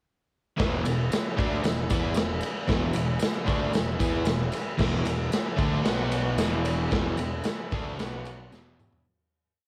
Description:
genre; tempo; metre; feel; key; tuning
garage rock duo or trio; 114 BPM; 4/4; straight; E mixolydian; A4 = 440 Hz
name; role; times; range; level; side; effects
overdriven combo organ; sustained chords; 0.6-9.1 s; F#4 to F#5; -41 LUFS; equal; none
crunchy overdriven guitar; riff; 0.6-9.1 s; E2 to E4; -32 LUFS; equal; none
fuzz picked electric bass; bass; 0.6-9.0 s; E1 to E2; -35 LUFS; equal; overdrive
raw garage drum kit; drums; 0.6-9.1 s; crash cymbal, kick drum, ride cymbal, snare drum, toms; -30 LUFS; equal; cassette tape
tambourine; percussion; 0.6-8.9 s; none; -49 LUFS; equal; none
room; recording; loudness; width
light reverb; home recording on cassette; -27 LUFS; mono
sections
0.6-9.1 riff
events
fade-out 6.9-9.1; drum fill 8.5-9.1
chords
0.6 E; 5.9 B5; 6.4 E; 8.0 B5; 8.5 E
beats
| 0.60 1.12 1.65 2.17 | 2.69 3.21 3.74 4.26 | 4.79 5.32 5.85 6.38 | 6.92 7.45 7.99 8.52

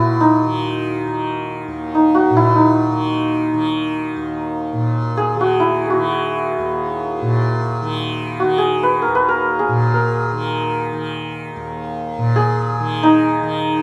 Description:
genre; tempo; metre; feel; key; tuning
indian classical, Hindustani; free time; none; none; Eb raga bhairavi; A4 = 440 Hz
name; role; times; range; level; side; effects
santur; melody; 0.0-13.8 s; Eb4 to Cb5; -20 LUFS; equal; plate reverb
tanpura; drone; 0.0-13.8 s; Eb2 to Eb3; -24 LUFS; equal; none
room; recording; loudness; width
moderate studio ambience, RT60 0.5 s; close, detailed microphones; -18 LUFS; mono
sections
0.0-4.7 A section; 4.7-13.8 A section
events
none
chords
none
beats
free time

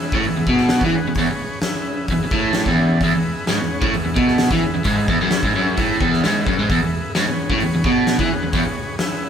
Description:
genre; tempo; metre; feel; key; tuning
garage rock duo or trio; 130 BPM; 4/4; straight; E major; A4 = 441 Hz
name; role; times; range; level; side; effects
combo organ; sustained chords; 0.0-9.3 s; G#4 to F#5; -27 LUFS; equal; none
overdriven electric guitar; riff; 0.0-8.7 s; E2 to E3; -17 LUFS; right 1 dB; none
oversized low-tuned drum kit; drums; 0.1-9.1 s; hi-hat, kick drum, snare drum; -22 LUFS; left 1 dB; none
room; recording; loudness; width
moderate stone room reverb, RT60 1.2 s; band playing live in one room; -16 LUFS; side -8 dB against mid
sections
0.0-9.3 A section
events
none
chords
0.0 E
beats
0.24 0.70 | 1.17 1.63 2.09 2.55 | 3.01 3.47 3.94 4.40 | 4.86 5.32 5.78 6.24 | 6.70 7.16 7.62 8.08 | 8.54 9.00

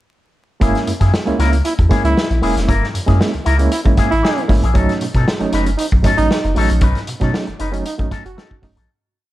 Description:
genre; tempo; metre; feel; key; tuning
funk; 116 BPM; 4/4; straight; F# mixolydian; A4 = 440 Hz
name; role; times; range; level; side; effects
electric guitar with an envelope filter; accompaniment; 0.6-8.9 s; A#3 to B4; -24 LUFS; left 5 dB; none
overdriven reed electric piano; stabs; 0.6-8.8 s; F#3 to E4; -21 LUFS; right 3 dB; medium tremolo
warm sub bass; bass; 0.6-8.9 s; E1 to B2; -17 LUFS; equal; none
vintage drum kit; drums; 0.6-8.9 s; hi-hat, kick drum, snare drum; -18 LUFS; equal; none
mellow trombone; second line; 1.4-8.6 s; D#4 to F#4; -22 LUFS; right 2 dB; tape echo
room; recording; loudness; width
light reverb; dark, warm production, vinyl crackle; -14 LUFS; side -15 dB against mid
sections
0.6-8.9 groove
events
fade-out 6.8-8.9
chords
0.6 F#9; 4.8 B9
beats
| 0.61 1.13 1.65 2.17 | 2.69 3.20 3.72 4.23 | 4.75 5.27 5.78 6.30 | 6.82 7.34 7.85 8.37

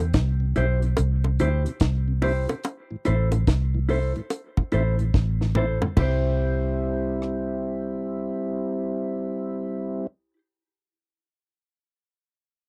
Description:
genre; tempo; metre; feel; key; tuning
roots reggae; 72 BPM; 4/4; swing 64% on 16ths; C major; A4 = 440 Hz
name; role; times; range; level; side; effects
mellow tonewheel organ; accompaniment; 0.0-10.1 s; A2 to E4; -30 LUFS; equal; slow rotary speaker
vintage muted fingered electric bass; bass; 0.0-10.3 s; A1 to E2; -25 LUFS; equal; none
deep reggae drum kit; drums; 0.1-7.5 s; crash cymbal, hi-hat, kick drum, rim click, snare drum, toms; -25 LUFS; equal; none
mellow electric guitar; accompaniment; 0.6-10.4 s; E4 to C5; -31 LUFS; equal; tape echo
bongos; percussion; 1.0-6.4 s; none; -31 LUFS; equal; none
room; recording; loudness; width
little or no reverb; dry, close 1970s-style studio recording; -25 LUFS; mono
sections
0.0-6.0 A section; 6.0-9.3 B section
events
drum fill 5.1-6.0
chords
0.0 C; 2.6 Am; 6.0 C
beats
0.14 0.98 1.81 | 2.64 3.48 4.31 5.14 | 5.97 6.81 7.64 8.47

